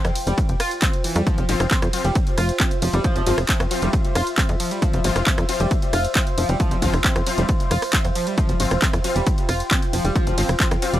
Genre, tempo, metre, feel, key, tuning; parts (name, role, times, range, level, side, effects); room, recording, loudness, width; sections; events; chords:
driving peak-time techno; 135 BPM; 4/4; straight; A4 = 440 Hz
tight sequencer bass; bass; 0.0-11.0 s; F1 to F2; -22 LUFS; equal; sidechain pumping
techno drum kit; drums; 0.0-11.0 s; handclaps, hi-hat, ride cymbal, rim click; -25 LUFS; equal; overdrive, sidechain pumping on hats, sidechain pumping on cymbals
warbly tape-like pad; texture; 0.0-11.0 s; F4 to G5; -29 LUFS; equal; chorus, built-in reverb, phaser, sidechain pumping
overdriven synth lead; riff; 0.3-11.0 s; E3 to F4; -27 LUFS; equal; distortion, lush chorus, sidechain pumping, analog delay
electronic kick drum; drums; 0.4-10.7 s; -21 LUFS; equal; overdrive
rave stab; stabs; 1.5-11.0 s; F3 to F4; -28 LUFS; left 4 dB; chorus, built-in reverb, sidechain pumping, tape echo
little or no reverb; dry, gritty hardware recording; -18 LUFS; side -13 dB against mid
0.0-11.0 A section
0.0 F5